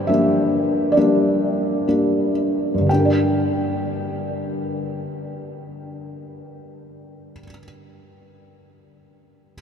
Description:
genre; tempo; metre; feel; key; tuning
classical, lyrical solo piano; 56-71 BPM; 4/4; rubato; G dorian; A4 = 439 Hz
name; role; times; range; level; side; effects
felt-muted upright piano; solo; 0.0-9.5 s; G2 to G5; -19 LUFS; equal; none
room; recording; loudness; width
wet huge ambient reverb, RT60 8.3 s; in a vast, echoing space; -18 LUFS; side -7 dB against mid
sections
0.0-2.9 A section; 2.9-7.0 B section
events
slowing down 0.0-2.9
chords
0.0 Gm

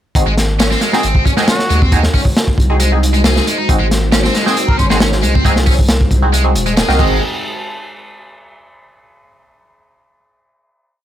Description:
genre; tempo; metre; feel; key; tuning
breakbeat, breaks; 136 BPM; 4/4; straight; unclear; A4 = 440 Hz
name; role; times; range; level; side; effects
dark analog pad; sustained chords; 0.9-7.2 s; G#3 to B#4; -24 LUFS; left 1 dB; chorus, vintage 12-bit sampler grit, sidechain pumping
band-passed chord stab; stabs; 0.2-7.2 s; B#3 to A#4; -21 LUFS; right 2 dB; phaser, ping-pong delay
saturated sub bass; bass; 0.2-7.2 s; D#1 to D#2; -15 LUFS; equal; none
crunchy breakbeat drum kit; drums; 0.2-7.1 s; crash cymbal, hi-hat, kick drum, snare drum; -15 LUFS; equal; none
tight distorted guitar; riff; 0.3-7.2 s; G#3 to G#4; -19 LUFS; equal; distortion, ping-pong delay
trumpet with plunger mute; melody; 0.9-5.0 s; F#4 to B#4; -22 LUFS; equal; old record sound, ping-pong delay
room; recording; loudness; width
small room ambience; none; -11 LUFS; side -11 dB against mid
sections
0.2-7.2 drop; 7.2-9.0 final hit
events
drop 0.2-7.2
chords
0.2 G#7; 7.2 N.C.

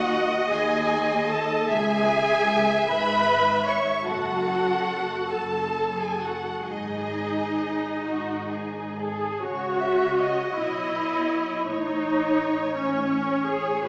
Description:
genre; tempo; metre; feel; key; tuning
classical, slow romantic movement for string orchestra; 43-56 BPM (dotted quarters); 6/8; rubato; C# minor; A4 = 439 Hz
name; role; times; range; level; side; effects
rich studio violin section; melody; 0.0-13.9 s; C#5 to C#6; -32 LUFS; equal; none
rich studio violin section; second line; 0.0-13.8 s; F#4 to E5; -30 LUFS; equal; none
rich studio viola section; accompaniment; 0.0-13.9 s; C#4 to C#5; -28 LUFS; equal; none
rich studio cello section; bass; 0.0-13.9 s; C#2 to C#3; -37 LUFS; equal; none
rich studio double bass section; bass; 0.0-13.9 s; F#1 to D#2; -40 LUFS; equal; none
room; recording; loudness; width
wet scoring stage reverb, RT60 1.5 s; heard from further back in the room, small speaker sound; -25 LUFS; mono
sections
0.0-9.4 A section; 9.4-13.9 B section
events
none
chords
0.0 G#5/D#; 1.7 C#m; 4.1 F#m; 6.7 G#5; 9.4 C#m; 11.7 A

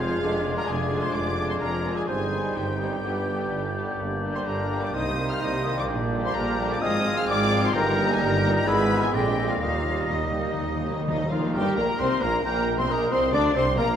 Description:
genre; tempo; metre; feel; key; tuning
classical, dramatic, fast romantic movement for symphony orchestra; 123-136 BPM; 4/4; straight; Eb major from 4.0 s; A4 = 440 Hz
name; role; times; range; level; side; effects
warm symphonic violin section; melody; 0.0-14.0 s; Eb5 to F6; -32 LUFS; left 4 dB; none
mellow clarinet; second line; 0.0-14.0 s; Bb3 to D5; -33 LUFS; left 1 dB; none
mellow hollow silver concert flute; second line; 0.0-14.0 s; Eb5 to Bb6; -34 LUFS; left 2 dB; none
warm cor anglais; second line; 0.0-14.0 s; Bb4 to G5; -33 LUFS; right 1 dB; none
warm symphonic violin section; second line; 0.0-13.9 s; Bb3 to D5; -36 LUFS; left 3 dB; none
mellow bassoon; accompaniment; 0.0-11.3 s; G3 to C4; -34 LUFS; equal; none
warm chamber viola section; accompaniment; 0.0-14.0 s; D3 to D4; -33 LUFS; right 1 dB; none
clear trombone section; sustained chords; 0.0-13.9 s; G2 to Ab3; -35 LUFS; right 3 dB; none
mellow French horn section; sustained chords; 0.0-13.9 s; Eb3 to G4; -34 LUFS; left 4 dB; none
clear trumpet section; stabs; 0.0-13.9 s; Eb4 to F5; -32 LUFS; right 1 dB; none
clear tuba; bass; 0.0-14.0 s; F1 to Eb2; -33 LUFS; right 3 dB; none
warm symphonic cello section; bass; 0.0-14.0 s; Eb2 to D4; -32 LUFS; right 2 dB; none
warm symphonic double bass section; bass; 0.0-14.0 s; F1 to Eb2; -33 LUFS; right 2 dB; none
timpani; percussion; 9.6-11.5 s; Eb3; -31 LUFS; left 1 dB; none
room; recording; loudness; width
wet scoring stage reverb, RT60 1.9 s; none; -22 LUFS; side -9 dB against mid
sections
0.0-11.6 A section; 11.6-14.0 B section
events
timpani fill 9.6-11.6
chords
0.2 Ddim/F; 2.1 Cm/G; 3.0 G; 4.0 Gm; 4.9 Cm7; 5.9 Gm/Bb; 6.8 Fm/Ab; 7.7 Eb/G; 8.7 E/G#; 9.1 Bb13; 9.6 Eb; 11.6 Eb/G; 13.3 Bb

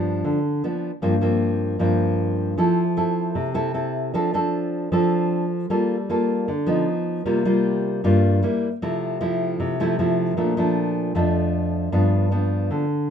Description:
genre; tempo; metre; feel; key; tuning
bossa nova; 154 BPM; 4/4; straight; F major; A4 = 440 Hz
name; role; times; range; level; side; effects
nylon-string guitar; solo; 0.0-13.1 s; F2 to A4; -20 LUFS; equal; none
room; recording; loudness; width
moderate studio reverb, RT60 0.9 s; minimal, uncompressed stereo recording; -20 LUFS; side -8 dB against mid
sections
0.0-10.4 A section; 10.4-13.1 B section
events
none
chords
0.0 G7; 0.6 Bdim/F; 1.0 C7sus4/G; 2.6 Fmaj7; 4.1 Dm7/F; 5.7 Gm9; 6.9 B; 7.3 C7sus4; 8.4 Gm6; 8.8 Fmaj7/C; 10.4 Bbmaj7; 11.9 G7

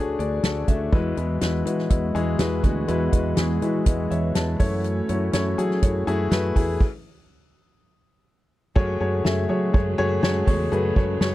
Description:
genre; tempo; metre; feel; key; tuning
piano-driven pop; 122 BPM; 4/4; straight; unclear; A4 = 439 Hz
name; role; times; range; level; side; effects
warm upright piano; accompaniment; 0.0-11.3 s; D3 to A5; -24 LUFS; left 3 dB; none
fingered electric bass; bass; 0.0-11.3 s; D2 to F#3; -26 LUFS; right 1 dB; none
soft-mallet drum kit; drums; 0.2-11.3 s; crash cymbal, hi-hat, kick drum, ride cymbal, snare drum; -22 LUFS; equal; none
warm analog pad; sustained chords; 0.9-11.3 s; C#3 to F#4; -32 LUFS; right 5 dB; chorus
room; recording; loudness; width
little or no reverb; dry, close 1970s-style studio recording; -20 LUFS; side -15 dB against mid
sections
0.9-8.8 A section; 8.8-11.3 B section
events
upright piano fill 3.9-4.8; stop 6.8-8.8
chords
0.0 D; 4.6 F#m7

